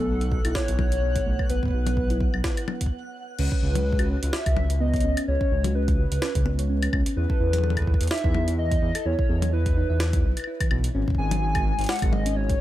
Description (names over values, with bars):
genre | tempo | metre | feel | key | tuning
IDM | 127 BPM | 4/4 | swing 56% on 16ths | C# minor | A4 = 440 Hz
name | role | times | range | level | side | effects
warbly nostalgic lead | melody | 0.0-12.6 s | A4 to G#5 | -30 LUFS | left 1 dB | analog chorus, tape echo
harp-like synth pluck | arpeggios | 0.0-12.5 s | E3 to E5 | -32 LUFS | right 2 dB | chorus, ping-pong delay
dark detuned saw bass | bass | 0.0-12.6 s | G#1 to E2 | -24 LUFS | equal | none
twinkling granular texture | texture | 0.0-2.9 s | F#5 | -42 LUFS | right 2 dB | built-in reverb
jungle sampler-style drum kit | drums | 0.2-12.6 s | crash cymbal, hi-hat, snare drum, toms, woodblock | -31 LUFS | left 3 dB | none
electronic kick drum | drums | 0.3-12.6 s | none | -25 LUFS | equal | none
room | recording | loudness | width
little or no reverb | none | -21 LUFS | side -14 dB against mid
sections
0.0-3.4 A section; 3.4-12.6 B section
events
stop 2.9-3.4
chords
0.0 B7(no3); 3.4 C#m7; 7.2 E5; 10.9 G#7(no3)